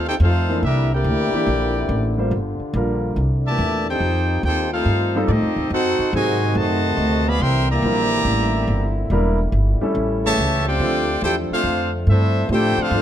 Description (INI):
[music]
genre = jazz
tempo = 142 BPM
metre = 4/4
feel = swing 67% on 8ths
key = C major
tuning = A4 = 441 Hz
[part]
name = bright trumpet section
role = melody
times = 0.0-13.0 s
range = C4 to C6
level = -22 LUFS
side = equal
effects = plate reverb
[part]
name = mellow trombone section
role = second line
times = 0.0-13.0 s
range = Bb2 to G4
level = -24 LUFS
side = equal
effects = none
[part]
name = warm trombone section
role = sustained chords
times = 0.0-13.0 s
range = C#3 to F#4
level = -30 LUFS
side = left 2 dB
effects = none
[part]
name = upright bass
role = bass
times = 0.0-13.0 s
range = E1 to A2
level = -20 LUFS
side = equal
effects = none
[part]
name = warm grand piano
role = accompaniment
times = 0.5-13.0 s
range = E3 to C5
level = -24 LUFS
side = equal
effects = none
[sound]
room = light reverb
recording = close, detailed microphones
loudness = -17 LUFS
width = side -10 dB against mid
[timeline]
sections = 0.0-13.0 A section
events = none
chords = 0.0 F9; 0.6 C9; 2.3 Gm7; 3.2 C9; 4.0 F9; 5.7 F#dim7; 7.4 C9; 9.1 Em7b5; 10.0 A7; 10.8 Dm7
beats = 0.21 | 0.63 1.05 1.48 1.90 | 2.33 2.75 3.17 3.60 | 4.02 4.44 4.87 5.29 | 5.72 6.14 6.56 6.99 | 7.41 7.83 8.26 8.68 | 9.11 9.53 9.96 10.38 | 10.80 11.23 11.65 12.08 | 12.50 12.92